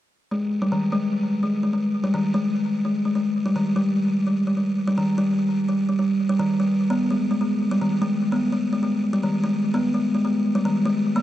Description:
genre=IDM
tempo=148 BPM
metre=4/4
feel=straight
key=unclear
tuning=A4 = 440 Hz
part: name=buzzing kalimba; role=arpeggios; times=0.3-11.2 s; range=Eb3 to Cb4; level=-20 LUFS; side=equal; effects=low-pass filter, ping-pong delay
room=moderate lush hall reverb, RT60 2.7 s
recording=none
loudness=-20 LUFS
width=side -13 dB against mid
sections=0.3-11.2 A section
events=none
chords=none

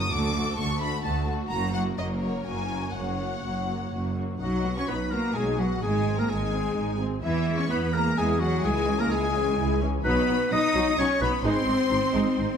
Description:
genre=cinematic, heroic adventure film score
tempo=128 BPM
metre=3/4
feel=straight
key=F# major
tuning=A4 = 440 Hz
part: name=warm symphonic violin section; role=melody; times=0.0-12.6 s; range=C#5 to D#6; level=-34 LUFS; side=left 3 dB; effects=none
part: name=warm symphonic violin section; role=second line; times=0.0-12.6 s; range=F#4 to D#6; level=-35 LUFS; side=left 3 dB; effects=none
part: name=warm symphonic viola section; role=accompaniment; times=0.0-12.5 s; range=E3 to G#4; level=-32 LUFS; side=equal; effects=none
part: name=rich symphonic cello section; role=bass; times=0.0-12.6 s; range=D2 to D#4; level=-30 LUFS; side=right 2 dB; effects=none
part: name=rich symphonic double bass section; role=bass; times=0.0-12.5 s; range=F#1 to E2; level=-30 LUFS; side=right 2 dB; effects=none
part: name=clear clarinet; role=second line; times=4.4-12.6 s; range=E4 to D#5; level=-29 LUFS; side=left 3 dB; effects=none
part: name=dark French horn section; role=sustained chords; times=4.4-12.6 s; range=E3 to D#4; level=-31 LUFS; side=left 5 dB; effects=none
room=moderate scoring stage reverb, RT60 1.6 s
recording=none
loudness=-23 LUFS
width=side -7 dB against mid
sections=0.0-4.4 A section; 4.4-12.6 B section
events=none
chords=0.1 D; 1.5 F#; 4.4 B; 5.8 G#; 7.2 E; 8.6 C#m; 10.1 B; 11.5 G#

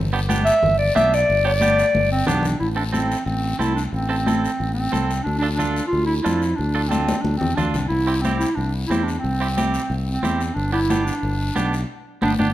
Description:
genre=latin, cumbia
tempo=181 BPM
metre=4/4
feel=straight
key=A minor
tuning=A4 = 440 Hz
part: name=fingered electric bass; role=bass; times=0.0-12.5 s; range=G1 to F2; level=-23 LUFS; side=equal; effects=none
part: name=clean electric guitar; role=accompaniment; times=0.1-12.5 s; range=B3 to A4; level=-27 LUFS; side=right 4 dB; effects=none
part: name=congas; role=percussion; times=0.3-12.5 s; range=none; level=-26 LUFS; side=left 1 dB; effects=none
part: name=guiro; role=percussion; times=0.3-12.5 s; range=none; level=-35 LUFS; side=left 6 dB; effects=none
part: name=clear clarinet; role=melody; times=0.5-12.5 s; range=C4 to E5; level=-21 LUFS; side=equal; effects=none
room=moderate large studio reverb, RT60 1.1 s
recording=none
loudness=-18 LUFS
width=side -14 dB against mid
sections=0.0-2.6 A section; 2.6-12.5 B section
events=clarinet solo 0.0-2.6; drum fill 1.9-2.6, 6.9-7.9; band accent 11.9-12.5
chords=0.0 G; 2.6 Am; 5.3 Dm; 7.9 C; 10.6 G

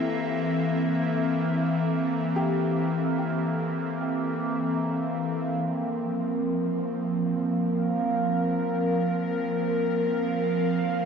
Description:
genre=ambient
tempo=free time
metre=none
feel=none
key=unclear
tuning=A4 = 440 Hz
part: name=airy breathy pad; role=sustained chords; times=0.0-11.1 s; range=E3 to F5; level=-25 LUFS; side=equal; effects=chorus
part: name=soft round pluck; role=arpeggios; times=0.0-5.6 s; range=E4 to G4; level=-37 LUFS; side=left 3 dB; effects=lush chorus, cassette tape, ping-pong delay
part: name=overtone-sweeping drone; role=drone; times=0.0-11.1 s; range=Bb3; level=-31 LUFS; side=right 2 dB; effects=chorus, built-in reverb
room=wet huge ambient reverb, RT60 8.1 s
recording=dark, warm production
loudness=-24 LUFS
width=side -6 dB against mid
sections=0.0-5.6 A section; 5.6-11.1 B section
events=none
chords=0.0 Am; 5.6 Bbsus2

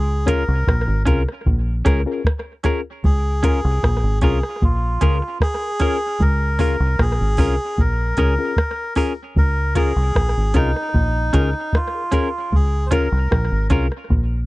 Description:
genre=roots reggae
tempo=76 BPM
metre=4/4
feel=straight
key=Db major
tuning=A4 = 440 Hz
part: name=melodica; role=melody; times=0.0-13.7 s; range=Eb4 to C5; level=-25 LUFS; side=equal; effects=tape echo
part: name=deep dub fingered electric bass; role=bass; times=0.0-14.5 s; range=Ab1 to Db2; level=-19 LUFS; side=equal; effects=none
part: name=semi-hollow electric guitar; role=accompaniment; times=0.3-13.9 s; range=Db4 to Bb4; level=-26 LUFS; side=right 3 dB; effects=vibrato effect, tape echo
part: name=barky reed electric piano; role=stabs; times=0.3-13.9 s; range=Db4 to Bb4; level=-22 LUFS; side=left 5 dB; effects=overdrive
part: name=soft vintage rhythm box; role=drums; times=0.3-14.3 s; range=hi-hat, kick drum, rim click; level=-19 LUFS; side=equal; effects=none
room=little or no reverb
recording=dry, close 1970s-style studio recording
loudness=-17 LUFS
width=side -20 dB against mid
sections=0.0-14.5 A section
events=none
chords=0.0 Db6; 1.5 Bbm7; 3.0 Db6; 4.6 Bbm7; 6.2 Db6; 7.8 Bbm7; 9.4 Db6; 10.9 Bbm7; 12.5 Db6

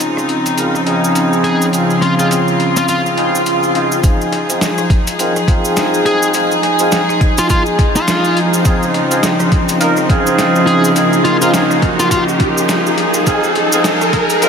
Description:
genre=glitch hop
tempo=104 BPM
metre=4/4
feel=swing 59% on 16ths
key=F minor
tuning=A4 = 438 Hz
part: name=warm studio string section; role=sustained chords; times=0.0-14.5 s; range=Db3 to Ab4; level=-15 LUFS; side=equal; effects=sidechain pumping
part: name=boom bap sampler-style drum kit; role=drums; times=0.0-14.5 s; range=hi-hat, rim click, snare drum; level=-22 LUFS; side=equal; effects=small room reverb
part: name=cabasa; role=percussion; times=0.0-14.5 s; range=none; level=-25 LUFS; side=right 3 dB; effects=none
part: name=bright horn section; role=stabs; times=0.6-14.5 s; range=Db3 to Bb4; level=-19 LUFS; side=right 1 dB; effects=sidechain pumping, low-pass filter, analog delay
part: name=smooth overdriven lead guitar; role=melody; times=1.4-12.2 s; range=F4 to Ab4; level=-20 LUFS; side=equal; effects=analog delay
part: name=swell and riser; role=sound effects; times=3.1-14.5 s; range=none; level=-22 LUFS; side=right 1 dB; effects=none
part: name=electronic kick drum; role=drums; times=4.0-14.3 s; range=none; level=-14 LUFS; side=equal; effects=small room reverb
room=wet huge ambient reverb, RT60 7.2 s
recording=dreamy mix soaked in reverb, high-pass filter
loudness=-11 LUFS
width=side -6 dB against mid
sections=0.0-4.0 A section; 4.0-14.5 B section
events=swell 3.1-4.0; build-up 4.0-14.5; riser 4.0-14.5; filter sweep on horn section 4.0-14.5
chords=0.0 Dbmaj9; 4.0 Fm7; 8.7 Dbmaj9; 13.3 Fm7

